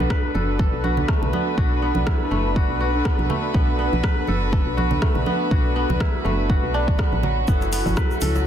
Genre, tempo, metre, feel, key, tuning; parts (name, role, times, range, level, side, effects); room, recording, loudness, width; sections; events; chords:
afro house; 122 BPM; 4/4; swing 56% on 16ths; B minor pentatonic; A4 = 440 Hz
warm chamber string section; sustained chords; 0.0-8.5 s; F#3 to B4; -30 LUFS; left 1 dB; sidechain pumping
kora; arpeggios; 0.0-8.5 s; F#3 to B4; -27 LUFS; right 2 dB; sidechain pumping, tape echo
mellow synth brass; stabs; 0.0-8.5 s; D4 to B4; -28 LUFS; left 2 dB; chorus, sidechain pumping, tape echo
woody FM bass; bass; 0.0-8.5 s; F#1 to C#2; -24 LUFS; equal; sidechain pumping
congas; percussion; 0.0-8.3 s; -28 LUFS; right 3 dB
deep house drum kit; drums; 0.1-8.3 s; hi-hat, rim click; -30 LUFS; left 1 dB; overdrive
electronic kick drum; drums; 0.1-8.1 s; -22 LUFS; equal; overdrive
egg shaker; percussion; 7.5-8.4 s; -38 LUFS; right 2 dB
djembe; percussion; 7.6-8.4 s; -33 LUFS; left 2 dB
studio reverb; dense, heavily limited modern master; -18 LUFS; side -9 dB against mid
0.0-8.5 A section
0.0 Bm7; 7.5 F#m7